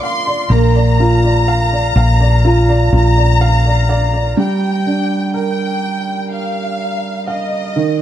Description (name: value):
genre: pop ballad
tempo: 62 BPM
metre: 4/4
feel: straight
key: unclear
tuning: A4 = 437 Hz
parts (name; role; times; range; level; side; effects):
- rich studio violin section; melody; 0.0-8.0 s; Eb5 to C6; -19 LUFS; left 1 dB; none
- warm baby grand piano; accompaniment; 0.0-8.0 s; Eb3 to F5; -17 LUFS; right 2 dB; none
- hollow-body short-scale fingered electric bass; bass; 0.5-4.3 s; Bb1; -12 LUFS; equal; none
room: light reverb, studio ambience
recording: dark, warm production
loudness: -12 LUFS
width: side -11 dB against mid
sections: 0.0-4.4 A section; 4.4-8.0 B section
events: grand piano fill 2.9-4.4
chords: 0.0 Bb; 4.4 Gm7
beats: | 0.50 1.47 2.44 3.40 | 4.37 5.34 6.31 7.28